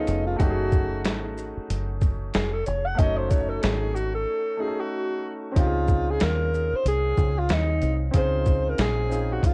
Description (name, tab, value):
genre	hip hop, jazz-hop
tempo	93 BPM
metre	4/4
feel	swing 60% on 16ths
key	Db major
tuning	A4 = 445 Hz
part	breathy alto saxophone	melody	0.0-9.5 s	Eb4 to Gb5	-30 LUFS	equal	cassette tape, analog delay
part	clear concert grand piano	accompaniment	0.0-9.5 s	A3 to Db5	-34 LUFS	equal	cassette tape
part	deep dub fingered electric bass	bass	0.0-9.5 s	F1 to Eb2	-29 LUFS	equal	tube saturation
part	boom bap sampler-style drum kit	drums	0.1-9.5 s	hi-hat, kick drum, shaker, snare drum	-26 LUFS	equal	cassette tape
room	little or no reverb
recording	home recording on cassette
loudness	-25 LUFS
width	mono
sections	0.0-5.6 A section; 5.6-9.5 B section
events	alto saxophone solo 0.0-5.6; break 4.3-5.6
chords	0.4 Gbm6; 5.6 Dbmaj9